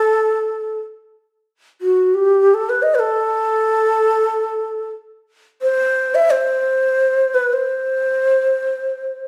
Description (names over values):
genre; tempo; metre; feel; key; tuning
arabic; 58 BPM (dotted quarters); 6/8; straight; A maqam nikriz; A4 = 441 Hz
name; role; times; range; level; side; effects
breathy mellow ney; solo; 0.0-9.3 s; F#4 to E5; -18 LUFS; equal; none
room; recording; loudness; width
wet large studio reverb, RT60 1.0 s; band playing live in one room; -18 LUFS; mono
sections
0.0-1.5 A section; 1.5-9.3 B section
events
none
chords
none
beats
0.42 | 1.46 2.50 | 3.54 4.58 | 5.62 6.66 | 7.70 8.73